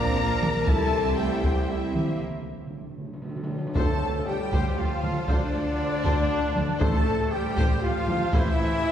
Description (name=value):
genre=cinematic, epic orchestral film score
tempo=118 BPM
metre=3/4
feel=straight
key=D minor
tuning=A4 = 440 Hz
part: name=rich symphonic violin section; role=melody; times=0.0-8.7 s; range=F4 to Bb5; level=-38 LUFS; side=left 2 dB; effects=none
part: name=mellow hollow silver concert flute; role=second line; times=0.0-8.9 s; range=D5 to Bb5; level=-36 LUFS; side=left 2 dB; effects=none
part: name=warm studio violin section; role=second line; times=0.0-8.9 s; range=D5 to Bb5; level=-34 LUFS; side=left 3 dB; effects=none
part: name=rich symphonic viola section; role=accompaniment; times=0.0-8.9 s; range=G3 to Bb4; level=-36 LUFS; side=left 1 dB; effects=none
part: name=bright trombone section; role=sustained chords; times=0.0-8.9 s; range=D3 to Bb3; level=-36 LUFS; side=right 2 dB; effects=none
part: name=clear symphonic string section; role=sustained chords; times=0.0-8.9 s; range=F3 to E5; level=-37 LUFS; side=left 1 dB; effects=none
part: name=warm French horn section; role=sustained chords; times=0.0-8.9 s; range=D4 to Bb4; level=-31 LUFS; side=left 2 dB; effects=none
part: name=dark trumpet section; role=stabs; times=0.0-8.9 s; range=D4 to D5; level=-34 LUFS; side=right 1 dB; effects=none
part: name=clear symphonic cello section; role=bass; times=0.0-8.7 s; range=D2 to E4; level=-37 LUFS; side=right 3 dB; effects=none
part: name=mellow tuba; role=bass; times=0.0-8.7 s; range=A1 to D2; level=-34 LUFS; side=right 2 dB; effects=none
part: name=rich symphonic double bass section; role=bass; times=0.0-8.7 s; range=A1 to D2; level=-33 LUFS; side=right 2 dB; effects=none
part: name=taiko ensemble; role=drums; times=0.4-8.8 s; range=none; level=-27 LUFS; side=equal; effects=none
part: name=timpani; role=percussion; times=2.2-4.5, 6.8-7.5 s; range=A2 to D3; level=-35 LUFS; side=equal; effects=none
room=wet concert hall reverb, RT60 2.1 s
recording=heard from further back in the room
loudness=-22 LUFS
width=side -9 dB against mid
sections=0.0-3.8 A section; 3.8-8.9 B section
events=break 2.2-3.8; timpani fill 2.2-3.8; drum fill 3.0-3.8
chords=0.0 Bb; 0.7 C; 2.2 N.C.; 3.8 Dm7; 6.8 Am7